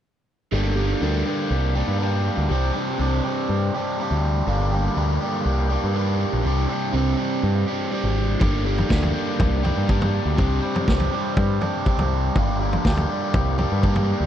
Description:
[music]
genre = psychedelic rock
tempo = 122 BPM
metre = 4/4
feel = straight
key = G minor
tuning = A4 = 443 Hz
[part]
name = overdriven electric guitar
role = riff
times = 0.5-14.3 s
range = G2 to G4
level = -23 LUFS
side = equal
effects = phaser
[part]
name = growling picked electric bass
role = bass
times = 0.5-14.3 s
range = G1 to G2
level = -22 LUFS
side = equal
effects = overdrive
[part]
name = vintage drum kit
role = drums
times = 8.4-14.1 s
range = kick drum, snare drum, toms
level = -23 LUFS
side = equal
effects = none
[sound]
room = little or no reverb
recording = dry, close 1970s-style studio recording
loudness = -20 LUFS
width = side -10 dB against mid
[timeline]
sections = 0.5-14.3 A section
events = none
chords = 0.5 Gm; 2.5 Csus2; 4.5 Gm; 6.4 Csus2; 8.4 Gm; 10.4 Csus2; 12.4 Gm

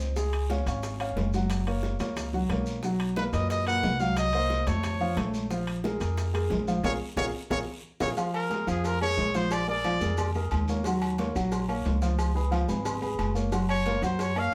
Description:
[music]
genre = latin, salsa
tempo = 180 BPM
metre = 4/4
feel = straight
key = Bb minor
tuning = A4 = 440 Hz
[part]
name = dark concert grand piano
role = accompaniment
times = 0.0-14.5 s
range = Bb2 to Ab5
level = -33 LUFS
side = equal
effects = none
[part]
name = upright bass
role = bass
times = 0.0-14.5 s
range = Gb1 to F#2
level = -33 LUFS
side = equal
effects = none
[part]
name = guiro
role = percussion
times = 0.0-14.5 s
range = none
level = -50 LUFS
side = equal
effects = none
[part]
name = maracas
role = percussion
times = 0.0-14.5 s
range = none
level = -49 LUFS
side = equal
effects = none
[part]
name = bongos and cowbell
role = percussion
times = 0.2-14.4 s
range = none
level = -41 LUFS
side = equal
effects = none
[part]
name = congas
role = percussion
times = 0.2-14.5 s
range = none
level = -39 LUFS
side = equal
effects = none
[part]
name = timbales and agogo bells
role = percussion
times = 0.3-14.5 s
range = none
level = -40 LUFS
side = equal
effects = none
[part]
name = bright trumpet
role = melody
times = 3.2-10.3, 13.7-14.5 s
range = Ab4 to F#5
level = -32 LUFS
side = equal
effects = none
[sound]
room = wet studio reverb, RT60 0.6 s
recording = heard from further back in the room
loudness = -28 LUFS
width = mono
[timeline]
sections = 0.0-8.2 A section; 8.2-14.5 B section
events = drum fill 6.8-8.2; band accent 6.8-8.2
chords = 0.2 Db; 1.5 Gb; 2.8 B5; 4.2 Cm7b5; 4.8 Faug; 5.5 Bb7(no3); 8.2 Bbm7; 9.5 Bb7; 10.8 Ebm9; 12.2 Db7; 13.5 Gb

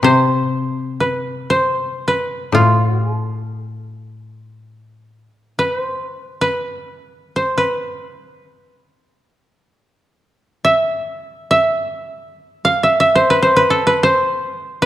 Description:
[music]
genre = japanese traditional, Japanese chamber music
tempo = free time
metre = none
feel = none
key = A hirajoshi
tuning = A4 = 439 Hz
[part]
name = koto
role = melody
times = 0.0-14.9 s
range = A4 to F5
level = -15 LUFS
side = right 1 dB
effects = none
[part]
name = koto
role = accompaniment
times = 0.0-5.3 s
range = A2 to C3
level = -18 LUFS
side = left 3 dB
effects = none
[sound]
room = moderate scoring stage reverb, RT60 1.9 s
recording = dark, warm production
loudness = -15 LUFS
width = side -13 dB against mid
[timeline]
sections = 0.0-14.9 A section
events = none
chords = none

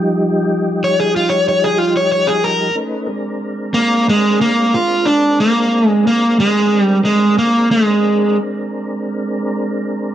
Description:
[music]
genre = blues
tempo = 61 BPM (dotted quarters)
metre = 12/8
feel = straight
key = Bb mixolydian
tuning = A4 = 439 Hz
[part]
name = tonewheel organ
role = sustained chords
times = 0.0-10.1 s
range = F3 to Cb5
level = -20 LUFS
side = equal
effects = chorus vibrato, slow rotary speaker
[part]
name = overdriven semi-hollow guitar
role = melody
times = 0.8-8.4 s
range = Ab3 to Db5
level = -12 LUFS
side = equal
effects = none
[sound]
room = moderate studio ambience, RT60 0.5 s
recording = dark, warm production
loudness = -13 LUFS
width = side -11 dB against mid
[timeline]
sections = 0.0-2.7 A section; 2.7-10.1 B section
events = overdriven electric guitar solo 0.0-2.7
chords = 0.0 Fsus2; 2.7 Bb9

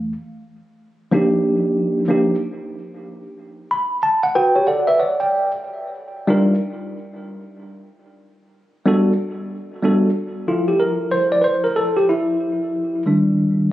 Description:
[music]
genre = hip hop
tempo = 93 BPM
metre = 4/4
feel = swing 63% on 16ths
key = unclear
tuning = A4 = 440 Hz
[part]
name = mellow tine electric piano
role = solo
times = 0.0-13.7 s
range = F2 to B5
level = -17 LUFS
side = equal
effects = medium stereo tremolo, tape echo
[sound]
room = moderate plate reverb, RT60 2.8 s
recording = recorded on a phone in the room, studio reverb, compression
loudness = -16 LUFS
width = side -14 dB against mid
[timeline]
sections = 0.2-10.5 A section; 10.5-13.7 B section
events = tine electric piano fill 3.4-5.3; tine electric piano solo 10.5-13.7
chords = 0.2 Ebmaj9; 2.7 N.C.; 5.3 Ebmaj9; 7.9 Gmaj9; 10.5 Fmaj7; 13.1 Ebmaj7

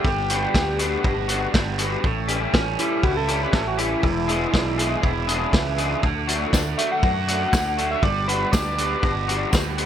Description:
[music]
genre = indie rock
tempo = 120 BPM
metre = 4/4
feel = straight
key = unclear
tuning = A4 = 445 Hz
[part]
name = overdriven synth lead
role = melody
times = 0.0-9.5 s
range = E4 to F#5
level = -26 LUFS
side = equal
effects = distortion, chorus
[part]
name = tonewheel organ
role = sustained chords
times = 0.0-9.9 s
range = G3 to D6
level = -34 LUFS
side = equal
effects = slow rotary speaker, overdrive
[part]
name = biting overdriven guitar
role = riff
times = 0.0-9.9 s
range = E2 to F#4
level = -28 LUFS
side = right 10 dB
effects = wide subtle chorus
[part]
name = electric guitar through a small old amp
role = riff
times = 0.0-9.9 s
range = E3 to G#4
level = -27 LUFS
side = left 8 dB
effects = ensemble chorus
[part]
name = fuzz fingered electric bass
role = bass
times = 0.0-9.9 s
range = E1 to F#2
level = -28 LUFS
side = equal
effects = overdrive
[part]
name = vintage drum kit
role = drums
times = 0.0-9.9 s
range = hi-hat, kick drum, snare drum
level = -23 LUFS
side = equal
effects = none
[part]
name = tambourine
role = percussion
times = 6.5-9.6 s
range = none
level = -35 LUFS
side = left 14 dB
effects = none
[sound]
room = light reverb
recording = none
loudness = -19 LUFS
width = side -9 dB against mid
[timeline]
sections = 0.0-9.9 A section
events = analog synth lead solo 0.0-9.9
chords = 0.1 Gmaj7; 2.1 A7; 4.0 E7; 6.0 D; 8.0 Gmaj7

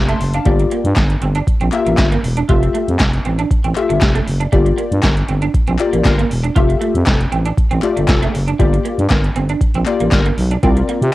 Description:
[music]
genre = early-eighties boogie funk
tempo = 118 BPM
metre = 4/4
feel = straight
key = unclear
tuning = A4 = 440 Hz
[part]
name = funky polysynth comp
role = accompaniment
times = 0.0-11.1 s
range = A3 to C6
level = -18 LUFS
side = left 5 dB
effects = chorus, cassette tape
[part]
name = growling FM bass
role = bass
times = 0.0-11.1 s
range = E1 to C3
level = -17 LUFS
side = equal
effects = transformer saturation
[part]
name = clean electric guitar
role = riff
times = 0.1-11.0 s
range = G3 to F4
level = -23 LUFS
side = right 6 dB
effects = ensemble chorus, cassette tape
[part]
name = electro analog drum machine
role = drums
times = 0.1-11.1 s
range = handclaps, hi-hat, kick drum, snare drum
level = -16 LUFS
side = equal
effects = cassette tape
[part]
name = group handclap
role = percussion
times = 1.0-10.2 s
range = none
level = -28 LUFS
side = left 6 dB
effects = none
[part]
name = warm horn section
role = second line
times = 5.0-10.3 s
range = E3 to Bb4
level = -26 LUFS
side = left 5 dB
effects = cassette tape
[sound]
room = little or no reverb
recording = home recording on cassette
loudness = -13 LUFS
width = side -17 dB against mid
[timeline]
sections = 0.0-11.1 A section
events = none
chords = 0.5 Gm7; 2.5 Fmaj9; 4.5 Gm7; 6.6 Fmaj9; 8.6 Gm7; 10.6 C9sus4

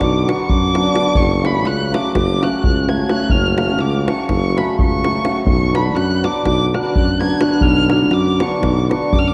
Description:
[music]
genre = balkan folk, Balkan wedding band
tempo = 251 BPM (eighths)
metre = 9/8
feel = straight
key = B minor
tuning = A4 = 440 Hz
[part]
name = dark violin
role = melody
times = 0.0-9.3 s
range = B5 to G#6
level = -25 LUFS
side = equal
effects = none
[part]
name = cimbalom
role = accompaniment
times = 0.0-9.3 s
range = C#3 to F#4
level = -22 LUFS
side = equal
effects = none
[part]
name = mellow tuba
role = bass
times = 0.0-9.3 s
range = F#1 to F#2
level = -21 LUFS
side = equal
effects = none
[part]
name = davul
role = percussion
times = 0.0-9.2 s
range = none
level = -22 LUFS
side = equal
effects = none
[sound]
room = moderate concert hall reverb, RT60 2.3 s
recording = worn, warbling old tape, cassette tape, warbly pitch drift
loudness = -16 LUFS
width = mono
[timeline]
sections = 0.0-9.3 A section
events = none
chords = 0.0 Bm; 1.1 F#m; 5.5 Bm

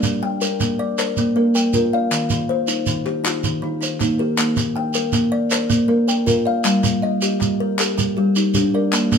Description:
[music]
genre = southern african traditional, mbira-style interlocking cycle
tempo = 106 BPM (dotted quarters)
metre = 12/8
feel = straight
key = Bb major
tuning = A4 = 441 Hz
[part]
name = kalimba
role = arpeggios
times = 0.0-9.2 s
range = Eb3 to G5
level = -20 LUFS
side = left 2 dB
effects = none
[part]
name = kalimba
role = arpeggios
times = 0.0-9.2 s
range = Eb3 to G5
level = -22 LUFS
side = right 2 dB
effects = none
[part]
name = group handclap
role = percussion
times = 0.0-9.2 s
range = none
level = -25 LUFS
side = left 4 dB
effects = none
[part]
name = shekere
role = percussion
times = 0.0-9.2 s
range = none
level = -23 LUFS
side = right 4 dB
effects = none
[sound]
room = wet studio reverb, RT60 0.6 s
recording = minimal, uncompressed stereo recording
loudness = -17 LUFS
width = side -6 dB against mid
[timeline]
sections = 0.0-9.2 A section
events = none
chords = 0.0 Bb; 2.1 Eb; 4.4 Bb; 6.7 Gm

